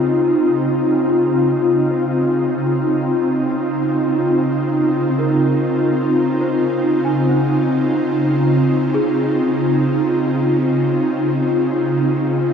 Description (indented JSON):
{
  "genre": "ambient",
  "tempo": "free time",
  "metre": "none",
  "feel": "none",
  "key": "Db major",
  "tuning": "A4 = 439 Hz",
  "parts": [
    { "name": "ethereal airy pad", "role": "sustained chords", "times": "0.0-12.5 s", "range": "Db3 to F4", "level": "-15 LUFS", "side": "equal", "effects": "ensemble chorus, built-in reverb, shimmer reverb" },
    { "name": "worn celesta", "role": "arpeggios", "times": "0.0-12.5 s", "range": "C4 to Ab5", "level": "-28 LUFS", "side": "equal", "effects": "lush chorus, ping-pong delay, shimmer reverb" }
  ],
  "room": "wet huge ambient reverb, RT60 8.4 s",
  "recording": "dreamy mix soaked in reverb, cassette tape",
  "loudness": "-15 LUFS",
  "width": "side -7 dB against mid",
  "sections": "0.0-12.5 A section",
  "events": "fade-in on celesta 0.0-12.5",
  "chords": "0.0 Dbmaj9"
}